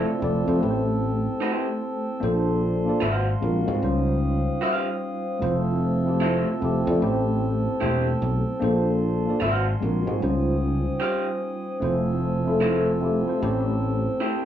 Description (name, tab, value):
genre	R&B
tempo	75 BPM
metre	4/4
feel	swing 63% on 16ths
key	F major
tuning	A4 = 438 Hz
part	electric guitar through a small old amp	second line	0.0-14.4 s	E4 to F5	-25 LUFS	right 1 dB	none
part	mellow tine electric piano	accompaniment	0.0-14.4 s	G3 to D5	-25 LUFS	left 1 dB	medium stereo tremolo
part	glass harmonica	sustained chords	0.0-14.4 s	Bb3 to E6	-31 LUFS	equal	none
part	sustaining fretless electric bass	bass	0.0-14.1 s	E1 to Ab2	-25 LUFS	equal	none
room	moderate small room reverb, RT60 0.5 s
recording	band playing live in one room, small room ambience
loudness	-21 LUFS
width	side -10 dB against mid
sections	0.0-14.4 A section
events	none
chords	0.0 Fmaj7; 0.6 Am7; 2.2 Bbmaj9; 3.0 Ab13; 3.8 Dbmaj9#11; 5.4 Fmaj7; 7.0 Am7; 8.6 Bbmaj9; 9.4 Ab13; 10.2 Dbmaj9#11; 11.8 Fmaj7; 13.4 Am7